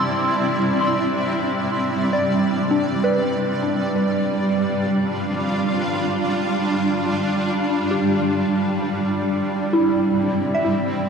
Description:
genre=ambient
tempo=free time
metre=none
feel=none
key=G mixolydian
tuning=A4 = 440 Hz
part: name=granular cloud pad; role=sustained chords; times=0.0-11.1 s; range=G3 to F5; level=-20 LUFS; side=right 1 dB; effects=built-in reverb, shimmer reverb
part: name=soft synth bell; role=arpeggios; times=0.0-11.1 s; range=D4 to E6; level=-24 LUFS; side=equal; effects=chorus, phaser, ping-pong delay, shimmer reverb
part: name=overtone-sweeping drone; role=drone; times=0.1-11.1 s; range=G3 to D4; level=-30 LUFS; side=left 1 dB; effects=chorus, built-in reverb, phaser
room=wet concert hall reverb, RT60 2.1 s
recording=none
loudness=-18 LUFS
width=side -6 dB against mid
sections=0.0-11.1 A section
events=fade-in on synth drone 0.0-11.1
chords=0.0 C/G; 3.3 G7sus4; 8.7 C/G

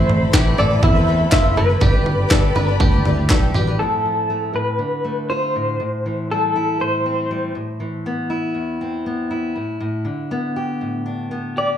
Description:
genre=indie folk with a building arrangement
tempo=120 BPM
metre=4/4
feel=straight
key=A minor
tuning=A4 = 437 Hz
part: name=electric guitar through a small old amp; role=melody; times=0.0-7.5, 11.6-11.8 s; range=A4 to E5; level=-21 LUFS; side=left 1 dB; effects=tremolo, slapback echo
part: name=dark upright piano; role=accompaniment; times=0.0-3.8 s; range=G1 to D5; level=-28 LUFS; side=left 1 dB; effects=none
part: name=picked twelve-string acoustic guitar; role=accompaniment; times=0.0-3.8 s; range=A2 to B4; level=-26 LUFS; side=left 6 dB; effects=ensemble chorus, slapback echo
part: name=warm studio string section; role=sustained chords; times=0.0-3.8 s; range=C4 to B5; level=-29 LUFS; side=left 2 dB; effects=none
part: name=bluegrass banjo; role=arpeggios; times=0.0-3.8 s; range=E4 to B4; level=-27 LUFS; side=right 4 dB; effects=slapback echo
part: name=fingered electric bass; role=bass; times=0.0-3.8 s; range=F#1 to E2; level=-19 LUFS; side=equal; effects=none
part: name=jungle sampler-style drum kit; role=drums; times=0.1-3.7 s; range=kick drum, snare drum, toms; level=-17 LUFS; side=right 1 dB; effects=none
part: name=group handclap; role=percussion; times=0.3-3.4 s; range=none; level=-24 LUFS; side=left 2 dB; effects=none
part: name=fingerpicked steel-string acoustic guitar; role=accompaniment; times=3.8-11.8 s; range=E2 to G4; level=-23 LUFS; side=left 1 dB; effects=slapback echo
room=small room reverb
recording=live gig heard through the venue's PA, club reverb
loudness=-17 LUFS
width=side -10 dB against mid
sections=0.0-3.8 A section; 3.8-11.8 B section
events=none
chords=0.0 Amadd9; 1.8 G; 3.8 Fmaj7/A; 4.5 Dm7/A; 5.8 C/A; 7.5 Amadd9; 9.8 G/A

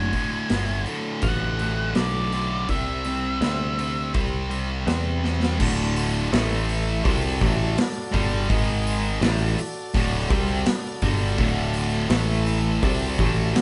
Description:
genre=blues rock power trio and southern rock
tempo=83 BPM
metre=4/4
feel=straight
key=D mixolydian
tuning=A4 = 440 Hz
part: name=octave-fuzz lead guitar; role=melody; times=0.0-4.1 s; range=D5 to G#5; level=-31 LUFS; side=equal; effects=distortion
part: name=sludgy distorted guitar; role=riff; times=0.0-13.6 s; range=D2 to C4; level=-29 LUFS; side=equal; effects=overdrive
part: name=picked electric bass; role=bass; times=0.0-13.6 s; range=D1 to E2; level=-28 LUFS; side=equal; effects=none
part: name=big rock drum kit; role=drums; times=0.1-13.6 s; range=crash cymbal, hi-hat, kick drum, snare drum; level=-29 LUFS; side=equal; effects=none
part: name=tonewheel organ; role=sustained chords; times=5.6-13.6 s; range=D#4 to E5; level=-36 LUFS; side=equal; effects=overdrive
room=light reverb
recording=band playing live in one room, nothing above 10.8 kHz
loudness=-23 LUFS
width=mono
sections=0.0-5.6 A section; 5.6-13.6 B section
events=drum fill 5.2-5.6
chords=0.0 D; 2.7 C; 5.6 D; 6.3 A5; 7.0 D; 8.5 G#5; 9.2 D; 12.1 A5; 12.8 D

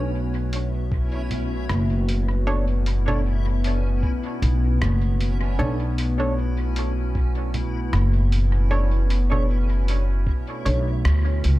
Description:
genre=ambient dub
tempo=77 BPM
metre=4/4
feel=swing 56% on 16ths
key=unclear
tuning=A4 = 439 Hz
part: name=warbly tape-like pad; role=sustained chords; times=0.0-11.6 s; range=B2 to B4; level=-30 LUFS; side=left 2 dB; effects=chorus, built-in reverb
part: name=filtered dub chord stab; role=stabs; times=0.0-10.9 s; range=D4 to C#5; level=-31 LUFS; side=right 2 dB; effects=chorus, dub echo
part: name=upright bass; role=bass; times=0.0-11.6 s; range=F#1 to D2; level=-21 LUFS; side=equal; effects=none
part: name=backwards swelling texture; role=texture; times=0.0-11.6 s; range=C#4 to E4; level=-36 LUFS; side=right 1 dB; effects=built-in reverb
part: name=lo-fi sampler-style drum kit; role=drums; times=0.5-11.6 s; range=congas, hi-hat, rim click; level=-33 LUFS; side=right 1 dB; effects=overdrive, dub echo
part: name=electronic kick drum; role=drums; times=0.9-10.4 s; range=none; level=-24 LUFS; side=equal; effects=overdrive
room=digital ambience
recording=echo-heavy mix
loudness=-20 LUFS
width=side -17 dB against mid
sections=0.0-11.6 A section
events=band accent 11.0-11.4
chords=0.0 Bm9

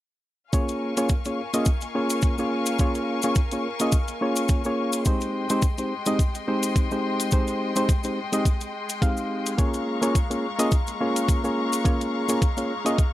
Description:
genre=nu-disco, nu disco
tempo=106 BPM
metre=4/4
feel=swing 55% on 16ths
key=Bb dorian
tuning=A4 = 441 Hz
part: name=bright reed electric piano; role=accompaniment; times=0.5-13.0 s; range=Ab3 to F5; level=-25 LUFS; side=equal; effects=overdrive, tape echo
part: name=rich studio string section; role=sustained chords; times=0.5-13.1 s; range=Ab3 to Db6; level=-31 LUFS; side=left 3 dB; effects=sidechain pumping
part: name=electronic hi-hat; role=drums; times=0.5-13.1 s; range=none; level=-34 LUFS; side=left 3 dB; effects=none
part: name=electronic kick drum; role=drums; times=0.5-13.1 s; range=none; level=-22 LUFS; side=equal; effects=none
part: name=cabasa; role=percussion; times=0.5-13.1 s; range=none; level=-34 LUFS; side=left 3 dB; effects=none
room=light reverb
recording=none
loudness=-22 LUFS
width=side -14 dB against mid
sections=0.5-13.1 A section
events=none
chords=0.5 Bbm7; 5.1 Abmaj7; 9.6 Bbm7

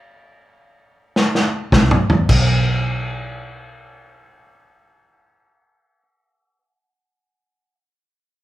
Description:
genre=electric blues shuffle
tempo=106 BPM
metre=4/4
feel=swing 66% on 8ths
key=unclear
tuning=A4 = 440 Hz
part: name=vintage drum kit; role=drums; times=1.2-2.5 s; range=crash cymbal, kick drum, snare drum, toms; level=-16 LUFS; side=equal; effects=none
part: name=vintage muted fingered electric bass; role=bass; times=1.7-6.0 s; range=B1 to E2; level=-18 LUFS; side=right 1 dB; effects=none
room=light reverb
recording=band playing live in one room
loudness=-15 LUFS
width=side -15 dB against mid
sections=0.0-2.3 A section; 2.3-4.6 B section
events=stop 0.0-1.7; drum fill 1.2-2.3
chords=none

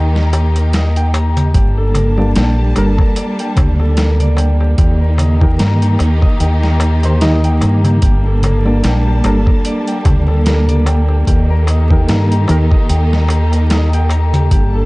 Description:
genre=trip hop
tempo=74 BPM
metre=4/4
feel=swing 56% on 16ths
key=unclear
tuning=A4 = 445 Hz
part: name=warm studio string section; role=sustained chords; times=0.0-14.9 s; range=Eb3 to A5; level=-20 LUFS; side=equal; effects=none
part: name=concert harp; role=arpeggios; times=0.0-14.9 s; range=G4 to Bb5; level=-23 LUFS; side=left 2 dB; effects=tape echo
part: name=deep dub fingered electric bass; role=bass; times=0.0-14.9 s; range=G1 to G2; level=-13 LUFS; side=equal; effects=none
part: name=dusty soul sampler-style drum kit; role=drums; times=0.2-14.7 s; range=hi-hat, kick drum, snare drum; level=-15 LUFS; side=equal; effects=overdrive
part: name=darbuka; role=percussion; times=0.3-14.7 s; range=none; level=-22 LUFS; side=left 1 dB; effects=none
part: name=barky reed electric piano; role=accompaniment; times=2.2-12.7 s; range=Eb3 to A5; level=-19 LUFS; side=equal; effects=medium tremolo, harmonic tremolo, vintage 12-bit sampler grit, tape echo
part: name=flickering grainy texture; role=texture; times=9.2-14.9 s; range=A4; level=-30 LUFS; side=right 5 dB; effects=built-in reverb
room=little or no reverb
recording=dark, warm production, vinyl crackle, nothing above 10.5 kHz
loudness=-10 LUFS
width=side -23 dB against mid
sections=0.0-14.9 A section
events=none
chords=0.0 Eb; 1.5 Gmadd9; 4.8 Eb; 8.0 Gmadd9; 11.3 Eb

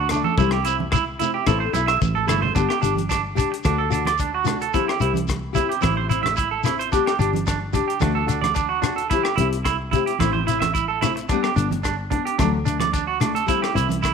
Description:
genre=highlife guitar band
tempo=110 BPM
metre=4/4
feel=straight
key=G major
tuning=A4 = 440 Hz
part: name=clean electric guitar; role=arpeggios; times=0.0-14.1 s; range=D4 to E5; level=-23 LUFS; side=right 10 dB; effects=slapback echo
part: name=fingered electric bass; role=bass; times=0.0-14.1 s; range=G1 to D2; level=-26 LUFS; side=left 1 dB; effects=none
part: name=nylon-string guitar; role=accompaniment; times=0.1-13.9 s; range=E3 to A4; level=-26 LUFS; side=left 13 dB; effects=none
part: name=tight funk drum kit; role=drums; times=0.1-14.1 s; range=hi-hat, kick drum, rim click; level=-27 LUFS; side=left 3 dB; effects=none
part: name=congas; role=percussion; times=0.1-14.0 s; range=none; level=-30 LUFS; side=right 9 dB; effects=none
part: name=shekere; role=percussion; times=0.1-14.1 s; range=none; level=-27 LUFS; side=left 7 dB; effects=none
room=light reverb, small room ambience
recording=1960s-style stereo with parts hard left and right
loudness=-19 LUFS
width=side -6 dB against mid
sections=0.0-2.6 A section; 2.6-14.1 B section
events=drum fill 2.0-2.6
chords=0.4 C; 1.5 Am; 2.6 G; 3.6 D; 4.7 C; 5.8 Am; 6.9 G; 8.0 D; 9.1 C; 10.2 Am; 11.3 G; 12.4 D; 13.5 C

